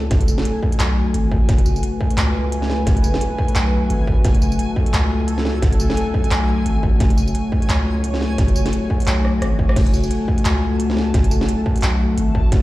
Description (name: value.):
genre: half-time drum and bass.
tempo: 174 BPM.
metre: 4/4.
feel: swing 58% on 16ths, half-time.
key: F# minor.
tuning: A4 = 439 Hz.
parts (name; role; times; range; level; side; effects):
dark analog pad; sustained chords; 0.0-12.6 s; A3 to C#5; -23 LUFS; left 2 dB; chorus, sidechain pumping.
long sustained 808-style bass; bass; 0.0-12.6 s; F#1 to C#2; -19 LUFS; equal; none.
backwards swelling texture; texture; 0.1-12.6 s; G#5 to A5; -32 LUFS; right 2 dB; built-in reverb.
electronic kick drum; drums; 0.1-12.6 s; none; -18 LUFS; equal; distortion.
industrial drum kit; drums; 0.1-12.6 s; crash cymbal, handclaps, hi-hat, rim click, snare drum, tambourine; -26 LUFS; right 1 dB; none.
room: moderate lush hall reverb, RT60 2.2 s.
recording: played on a big sound system in a bare room, large studio reverb.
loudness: -16 LUFS.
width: side -17 dB against mid.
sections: 0.0-12.6 A section.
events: drum fill 9.2-9.8.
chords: 0.0 F#madd9.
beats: | 0.11 0.45 0.80 1.14 | 1.49 1.83 2.18 2.52 | 2.87 3.21 3.56 3.90 | 4.25 4.59 4.93 5.28 | 5.62 5.97 6.31 6.66 | 7.00 7.35 7.69 8.04 | 8.38 8.73 9.07 9.42 | 9.76 10.11 10.45 10.80 | 11.14 11.49 11.83 12.18 | 12.52.